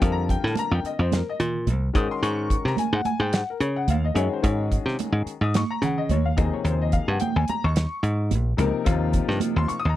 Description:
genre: electric jazz fusion.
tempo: 109 BPM.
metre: 4/4.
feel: swing 55% on 16ths.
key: unclear.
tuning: A4 = 440 Hz.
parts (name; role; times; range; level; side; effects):
clear baby grand piano; accompaniment; 0.0-10.0 s; C3 to Eb6; -27 LUFS; left 6 dB; none.
dry thumbed slap bass; bass; 0.0-10.0 s; Bb1 to Db3; -23 LUFS; equal; none.
damped 70s drum kit; drums; 0.0-9.8 s; hi-hat, kick drum, snare drum; -26 LUFS; equal; none.
congas; percussion; 0.0-9.8 s; none; -30 LUFS; right 10 dB; none.
room: little or no reverb.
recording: dry, close 1970s-style studio recording.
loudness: -21 LUFS.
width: side -14 dB against mid.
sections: 0.0-10.0 A section.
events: none.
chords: 0.0 Fsus4; 2.0 Ab9sus4; 6.4 Eb13sus4.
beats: | 0.03 0.58 1.13 1.68 | 2.23 2.79 3.34 3.89 | 4.45 5.00 5.55 6.10 | 6.66 7.21 7.76 8.31 | 8.87 9.42.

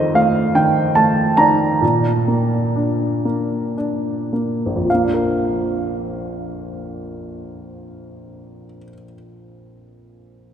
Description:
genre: classical, lyrical solo piano.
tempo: 52-73 BPM.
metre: 3/4.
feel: rubato.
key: Bb major.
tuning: A4 = 440 Hz.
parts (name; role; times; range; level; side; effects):
warm baby grand piano; solo; 0.0-10.5 s; Bb1 to Bb5; -17 LUFS; right 1 dB; none.
room: wet cathedral reverb, RT60 5.2 s.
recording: recorded in a church or concert hall.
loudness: -16 LUFS.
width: side -8 dB against mid.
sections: 0.0-4.9 A section; 4.9-8.3 B section.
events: slowing down 0.0-4.9.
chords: 0.0 F7; 1.8 Bb.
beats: 0.14 0.96 | 1.82 2.76 3.78 | 4.90 6.05 7.18.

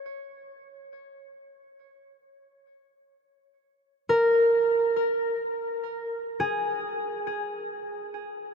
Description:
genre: ambient.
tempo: free time.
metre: none.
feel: none.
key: unclear.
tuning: A4 = 438 Hz.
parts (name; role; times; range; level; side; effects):
concert harp; solo; 0.0-8.5 s; G#4 to C#5; -25 LUFS; equal; ping-pong delay.
room: wet huge ambient reverb, RT60 8.6 s.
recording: none.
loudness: -24 LUFS.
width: side -6 dB against mid.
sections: 0.0-2.9 A section; 2.9-8.5 B section.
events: none.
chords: 0.0 N.C.; 2.9 G#sus2.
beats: free time.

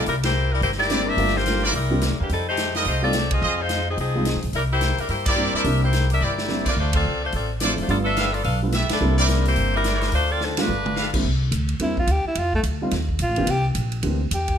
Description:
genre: jazz, big band swing.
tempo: 215 BPM.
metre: 4/4.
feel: swing 62% on 8ths.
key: C mixolydian.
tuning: A4 = 440 Hz.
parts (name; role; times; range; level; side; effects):
clear saxophone section; melody; 0.0-11.2 s; E3 to F5; -24 LUFS; left 2 dB; none.
warm concert grand piano; accompaniment; 0.0-14.2 s; E3 to G4; -27 LUFS; right 1 dB; none.
clear trumpet section; stabs; 0.0-11.1 s; E4 to F5; -27 LUFS; right 2 dB; none.
upright bass; bass; 0.0-14.6 s; F1 to G2; -24 LUFS; equal; none.
swinging big-band drum kit; drums; 0.1-14.5 s; crash cymbal, hi-hat, kick drum, ride cymbal, snare drum, toms; -28 LUFS; equal; none.
clear alto saxophone; melody; 11.8-14.6 s; A3 to G4; -25 LUFS; equal; none.
room: light reverb.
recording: none.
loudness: -19 LUFS.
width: side -8 dB against mid.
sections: 0.0-11.2 A section; 11.2-14.6 B section.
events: band accent 0.2, 3.3, 5.2, 6.9, 8.9, 10.5; drum fill 6.2, 10.4-11.0; alto saxophone solo 11.2-14.6.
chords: 0.1 C9; 1.2 Gm7; 1.7 C9; 2.3 F9; 3.4 Fm7; 4.5 C9; 6.8 Dm7; 7.9 G9; 9.0 C9; 10.1 Dm7; 10.7 G9; 11.2 C9; 12.4 F9; 13.5 C9.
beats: | 0.06 0.34 0.62 0.90 | 1.18 1.46 1.74 2.02 | 2.29 2.57 2.85 3.13 | 3.41 3.69 3.97 4.25 | 4.53 4.81 5.09 5.37 | 5.65 5.93 6.21 6.49 | 6.77 7.05 7.33 7.61 | 7.89 8.17 8.45 8.73 | 9.01 9.29 9.56 9.85 | 10.12 10.40 10.68 10.96 | 11.24 11.52 11.80 12.08 | 12.36 12.64 12.92 13.20 | 13.47 13.75 14.03 14.31.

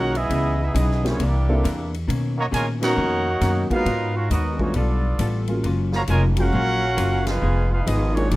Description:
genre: jazz, big band swing.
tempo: 135 BPM.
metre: 4/4.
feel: swing 66% on 8ths.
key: unclear.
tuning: A4 = 440 Hz.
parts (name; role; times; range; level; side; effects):
mellow trumpet section; melody; 0.0-8.4 s; Bb3 to A#5; -26 LUFS; right 2 dB; none.
mellow trombone section; second line; 0.0-8.4 s; Db3 to Gb4; -29 LUFS; right 1 dB; none.
vintage hollow-body jazz guitar; accompaniment; 0.0-8.4 s; Bb2 to Bb4; -29 LUFS; left 4 dB; none.
warm upright piano; accompaniment; 0.0-8.3 s; Gb3 to A4; -26 LUFS; equal; none.
upright bass; bass; 0.0-8.4 s; F1 to B2; -22 LUFS; equal; none.
swinging big-band drum kit; drums; 0.1-8.4 s; hi-hat, kick drum, ride cymbal, snare drum; -34 LUFS; equal; none.
room: light reverb.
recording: rough home demo mix.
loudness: -19 LUFS.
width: side -18 dB against mid.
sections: 0.0-8.4 A section.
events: band accent 2.7, 7.2.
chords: 0.3 Dbm9; 1.2 C9; 2.1 Bmaj9; 3.9 Abm9; 4.7 G9; 5.6 Gbmaj7; 7.4 Fm7b5.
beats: | 0.30 0.74 1.19 1.63 | 2.08 2.52 2.97 3.41 | 3.86 4.30 4.75 5.19 | 5.64 6.08 6.53 6.97 | 7.42 7.86 8.31.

